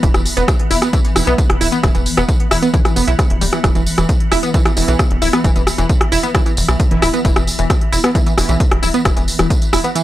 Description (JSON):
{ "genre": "driving peak-time techno", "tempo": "133 BPM", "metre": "4/4", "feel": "straight", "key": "unclear", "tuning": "A4 = 440 Hz", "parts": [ { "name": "tight sequenced synth", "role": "riff", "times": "0.0-10.0 s", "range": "E3 to E4", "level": "-19 LUFS", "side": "right 1 dB", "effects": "chorus, tube saturation, sidechain pumping, tape echo" }, { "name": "tight sequencer bass", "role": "bass", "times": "0.0-9.8 s", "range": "D1 to B1", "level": "-19 LUFS", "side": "equal", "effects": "sidechain pumping" }, { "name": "swarming drone", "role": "drone", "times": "0.0-10.0 s", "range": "E3 to B3", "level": "-25 LUFS", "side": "left 1 dB", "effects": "built-in reverb, sidechain pumping" }, { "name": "electronic kick drum", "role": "drums", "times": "0.0-9.6 s", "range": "none", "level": "-16 LUFS", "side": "equal", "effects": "studio reverb" }, { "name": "techno drum kit", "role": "drums", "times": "0.0-10.0 s", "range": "hi-hat, rim click, tambourine", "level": "-20 LUFS", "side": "equal", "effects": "studio reverb, sidechain pumping on hats, sidechain pumping on perc" }, { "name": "rave stab", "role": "stabs", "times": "1.2-1.4, 4.8-8.6 s", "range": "E3 to E4", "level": "-25 LUFS", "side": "right 3 dB", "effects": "chorus, built-in reverb, sidechain pumping, analog delay" } ], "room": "little or no reverb", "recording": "dry, gritty hardware recording, transformer saturation", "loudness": "-12 LUFS", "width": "side -14 dB against mid", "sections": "0.0-10.0 A section", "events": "none", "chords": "0.0 E5", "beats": "| 0.03 0.48 0.93 1.38 | 1.83 2.29 2.74 3.19 | 3.64 4.09 4.54 4.99 | 5.44 5.89 6.35 6.80 | 7.25 7.70 8.15 8.60 | 9.05 9.50 9.96" }